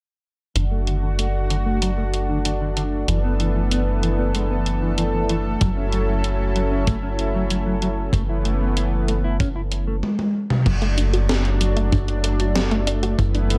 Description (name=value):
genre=synthwave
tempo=95 BPM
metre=4/4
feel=straight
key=unclear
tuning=A4 = 444 Hz
part: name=lush unison pad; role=sustained chords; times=0.6-13.6 s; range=D3 to A4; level=-28 LUFS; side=equal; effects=chorus, sidechain pumping
part: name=mellow electric guitar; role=riff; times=0.6-10.0 s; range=D3 to E4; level=-30 LUFS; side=equal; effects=subtle chorus, low-pass filter, tape echo
part: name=tight sequencer bass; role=bass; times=0.6-13.6 s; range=F#1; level=-24 LUFS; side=equal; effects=sidechain pumping
part: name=gated 80s digital drum machine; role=drums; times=0.6-13.6 s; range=crash cymbal, hi-hat, snare drum, toms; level=-27 LUFS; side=equal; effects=gated reverb, gated reverb snare
part: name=kick drum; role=drums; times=5.6-13.3 s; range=none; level=-24 LUFS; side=equal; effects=none
part: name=unison pluck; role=arpeggios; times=10.7-13.6 s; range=E3 to A4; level=-30 LUFS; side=equal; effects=tape echo
room=little or no reverb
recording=none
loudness=-21 LUFS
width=mono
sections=0.6-10.7 A section; 10.7-13.6 B section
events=filter sweep on analog synth bass 0.6-10.7; filter sweep on clean electric guitar 0.6-10.7; drum fill 10.0-10.7; filter sweep on synth arpeggio sound 10.7-13.6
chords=0.6 D/F#; 3.1 E7sus4/F#; 5.6 F#m7; 8.1 Aadd9/F#; 10.7 D/F#